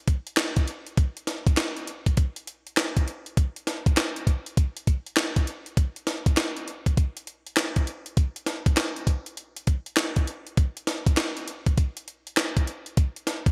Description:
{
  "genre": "R&B",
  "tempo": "100 BPM",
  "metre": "4/4",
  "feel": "swing 64% on 16ths",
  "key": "none",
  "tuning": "none",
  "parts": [
    { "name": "breakbeat sampler-style drum kit", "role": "drums", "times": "0.1-13.5 s", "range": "handclaps, hi-hat, kick drum, snare drum", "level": "-25 LUFS", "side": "equal", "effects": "gated reverb" }
  ],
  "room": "light reverb",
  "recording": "bright 1980s-style digital production",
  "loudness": "-26 LUFS",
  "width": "mono",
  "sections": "0.0-13.5 A section",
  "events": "none",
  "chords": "none",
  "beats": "0.37 | 0.97 1.57 2.17 2.77 | 3.37 3.97 4.57 5.17 | 5.77 6.37 6.97 7.57 | 8.17 8.77 9.37 9.97 | 10.57 11.17 11.77 12.37 | 12.97"
}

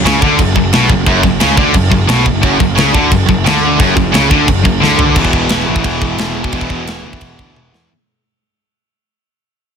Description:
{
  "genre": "heavy metal",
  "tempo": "176 BPM",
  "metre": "4/4",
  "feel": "straight",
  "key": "unclear",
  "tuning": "A4 = 440 Hz",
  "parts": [
    { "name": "heavy high-gain guitar", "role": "riff", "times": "0.0-7.9 s", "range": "E2 to E3", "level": "-15 LUFS", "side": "left 9 dB", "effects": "distortion" },
    { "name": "tight distorted guitar", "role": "riff", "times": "0.0-7.9 s", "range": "E2 to E3", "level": "-17 LUFS", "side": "right 12 dB", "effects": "distortion" },
    { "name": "tight distorted guitar", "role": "riff", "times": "0.0-5.2 s", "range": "F#2 to D3", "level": "-17 LUFS", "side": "equal", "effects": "distortion" },
    { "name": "fuzz picked electric bass", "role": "bass", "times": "0.0-7.9 s", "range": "E1 to E2", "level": "-18 LUFS", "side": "equal", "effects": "overdrive" },
    { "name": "tight metal drum kit", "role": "drums", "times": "0.1-7.8 s", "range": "crash cymbal, kick drum, ride cymbal, snare drum, toms", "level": "-14 LUFS", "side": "equal", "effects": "soft clipping on kick" }
  ],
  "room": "studio ambience",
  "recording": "dense, heavily limited modern master",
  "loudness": "-9 LUFS",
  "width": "side -7 dB against mid",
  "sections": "0.0-5.2 A section; 5.2-7.9 B section",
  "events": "drum fill 4.8-5.2, 7.6-7.9; fade-out 5.2-7.9",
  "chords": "0.0 F#5; 5.2 E5",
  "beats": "0.05 0.39 0.73 | 1.07 1.41 1.75 2.09 | 2.43 2.77 3.11 3.45 | 3.79 4.13 4.47 4.82 | 5.16 5.50 5.84 6.18 | 6.53 6.87 7.21 7.56"
}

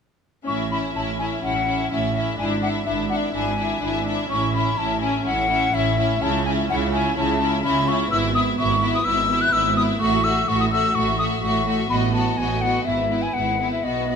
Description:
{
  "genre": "quick classical-period movement for symphony orchestra",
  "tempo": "126 BPM",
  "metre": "4/4",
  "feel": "straight",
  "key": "A major, E major from 8.1 s",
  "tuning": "A4 = 442 Hz",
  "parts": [
    { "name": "rich chamber violin section", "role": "melody", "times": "0.5-14.2 s", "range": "B4 to E5", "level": "-30 LUFS", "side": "left 4 dB", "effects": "none" },
    { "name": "rich studio violin section", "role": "second line", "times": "0.5-14.2 s", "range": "E4 to F#4", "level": "-28 LUFS", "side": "left 2 dB", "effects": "none" },
    { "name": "silver concert flute", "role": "second line", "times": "0.5-14.2 s", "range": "D#5 to F#6", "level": "-23 LUFS", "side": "left 2 dB", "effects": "none" },
    { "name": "warm chamber viola section", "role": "accompaniment", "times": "0.5-14.2 s", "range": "A3 to D4", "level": "-26 LUFS", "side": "left 2 dB", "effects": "none" },
    { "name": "clear chamber double bass section", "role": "bass", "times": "0.5-14.2 s", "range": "G#1 to C#2", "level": "-28 LUFS", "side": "right 4 dB", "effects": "none" },
    { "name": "clear symphonic cello section", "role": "bass", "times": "0.5-14.2 s", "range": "G#2 to C#3", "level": "-28 LUFS", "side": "right 5 dB", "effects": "none" }
  ],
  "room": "moderate concert hall reverb, RT60 1.7 s",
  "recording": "close, detailed microphones",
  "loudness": "-19 LUFS",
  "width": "side -6 dB against mid",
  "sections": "0.5-14.2 A section",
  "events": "none",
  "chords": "0.5 A; 2.4 E7/G#; 4.3 A; 6.2 A/C#; 8.1 E/G#; 10.0 F#m7/A; 11.9 B7/A; 12.9 E/G#",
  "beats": "| 0.47 0.95 1.43 1.91 | 2.39 2.87 3.35 3.83 | 4.31 4.79 5.27 5.75 | 6.22 6.70 7.17 7.65 | 8.12 8.59 9.06 9.54 | 10.01 10.49 10.96 11.43 | 11.91 12.39 12.86 13.35 | 13.84"
}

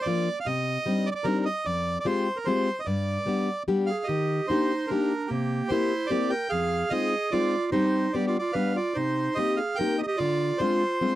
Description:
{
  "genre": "musette waltz",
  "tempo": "148 BPM",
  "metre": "3/4",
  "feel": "straight",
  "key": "C minor",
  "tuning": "A4 = 439 Hz",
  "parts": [
    { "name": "bandoneon", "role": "melody", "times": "0.0-11.2 s", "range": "G4 to G5", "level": "-29 LUFS", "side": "right 2 dB", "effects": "none" },
    { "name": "picked plugged-in steel-string acoustic guitar", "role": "accompaniment", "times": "0.1-11.2 s", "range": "F2 to G4", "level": "-27 LUFS", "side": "left 3 dB", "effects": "none" },
    { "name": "bright clarinet", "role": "second line", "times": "3.9-11.1 s", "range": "Bb3 to B4", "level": "-28 LUFS", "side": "right 3 dB", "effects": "none" }
  ],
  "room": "light reverb",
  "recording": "dry, close 1970s-style studio recording",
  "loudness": "-24 LUFS",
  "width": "side -14 dB against mid",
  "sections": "0.0-11.2 A section",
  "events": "none",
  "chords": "0.5 Cmadd9; 1.7 Fmadd9; 2.9 G; 4.1 Ebmaj7; 5.3 C7; 6.5 Fm7; 7.7 Cm/G; 8.1 G; 9.0 Cm7; 10.2 Dm7b5",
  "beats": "0.07 | 0.47 0.87 1.27 | 1.67 2.07 2.47 | 2.87 3.27 3.68 | 4.08 4.49 4.90 | 5.30 5.71 6.11 | 6.52 6.92 7.33 | 7.74 8.15 8.56 | 8.97 9.38 9.79 | 10.20 10.61 11.02"
}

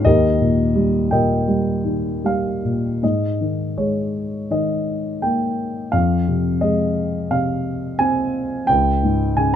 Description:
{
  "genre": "classical, lyrical solo piano",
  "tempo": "75-88 BPM",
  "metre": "4/4",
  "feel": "rubato",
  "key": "Ab major",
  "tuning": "A4 = 440 Hz",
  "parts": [
    { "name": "dark concert grand piano", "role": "solo", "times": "0.0-9.6 s", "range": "Db2 to Ab5", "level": "-17 LUFS", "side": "equal", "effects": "none" }
  ],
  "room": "little or no reverb",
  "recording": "close, detailed microphones",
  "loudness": "-17 LUFS",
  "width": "side -9 dB against mid",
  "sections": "0.0-3.0 A section; 3.0-9.6 A section",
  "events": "none",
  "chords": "0.1 Eb; 3.0 Absus2; 5.9 Fm; 8.7 Db5",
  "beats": "| 0.05 0.75 1.48 2.25 | 3.02 3.78 4.51 5.23 | 5.93 6.63 7.31 8.00 | 8.69 9.38"
}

